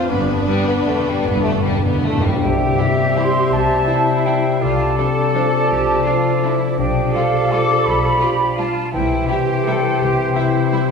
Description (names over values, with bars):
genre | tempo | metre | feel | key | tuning
classical | 147-181 BPM | 3/4 | rubato | C major | A4 = 439 Hz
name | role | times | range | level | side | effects
warm symphonic violin section | melody | 0.0-10.8 s | A4 to E5 | -32 LUFS | left 3 dB | none
warm symphonic viola section | accompaniment | 0.0-10.8 s | E3 to F4 | -29 LUFS | right 2 dB | none
mellow French horn section | sustained chords | 0.0-10.9 s | F3 to F4 | -28 LUFS | left 3 dB | none
concert harp | arpeggios | 0.0-10.9 s | F2 to A5 | -21 LUFS | left 6 dB | none
clear symphonic double bass section | bass | 0.1-10.3 s | G1 to C2 | -28 LUFS | right 3 dB | none
rich symphonic cello section | bass | 0.1-10.9 s | G2 to A4 | -24 LUFS | right 2 dB | none
timpani | percussion | 0.1-2.4, 8.9-9.4 s | G2 to C3 | -23 LUFS | equal | none
warm symphonic violin section | second line | 0.5-10.8 s | G3 to F4 | -27 LUFS | left 1 dB | none
hollow small flute group | second line | 2.4-10.9 s | E5 to D6 | -21 LUFS | equal | none
mellow clarinet | second line | 2.4-10.9 s | G4 to C5 | -27 LUFS | left 2 dB | none
warm oboe | second line | 2.4-10.9 s | C5 to E5 | -25 LUFS | right 3 dB | none
mellow bassoon | accompaniment | 2.4-10.9 s | E3 to G3 | -23 LUFS | right 2 dB | none
room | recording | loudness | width
wet scoring stage reverb, RT60 1.5 s | heard from further back in the room | -15 LUFS | side -5 dB against mid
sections
0.0-2.4 A section; 2.4-10.9 B section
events
timpani fill 0.1-2.4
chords
0.1 G; 2.4 C; 4.6 Dm7/C; 6.8 G7/B; 8.9 C